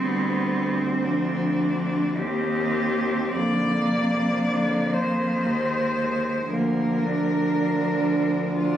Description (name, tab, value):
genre	classical, lyrical piece for cello ensemble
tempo	50-59 BPM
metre	3/4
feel	rubato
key	unclear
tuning	A4 = 440 Hz
part	rich cello	melody	0.0-8.8 s	Cb4 to D5	-27 LUFS	left 2 dB	none
part	rich cello	second line	0.0-8.8 s	Ab3 to D4	-26 LUFS	right 3 dB	none
part	rich cello	accompaniment	0.0-8.8 s	C3 to G3	-30 LUFS	left 3 dB	none
part	rich cello	bass	0.0-8.8 s	D2 to F2	-27 LUFS	equal	none
room	light reverb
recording	recorded on a phone in the room, studio ambience, compression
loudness	-21 LUFS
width	side -10 dB against mid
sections	0.0-8.8 A section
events	none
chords	0.0 Dm7; 2.2 Cm/Eb; 3.3 Fm7; 6.5 Bb/D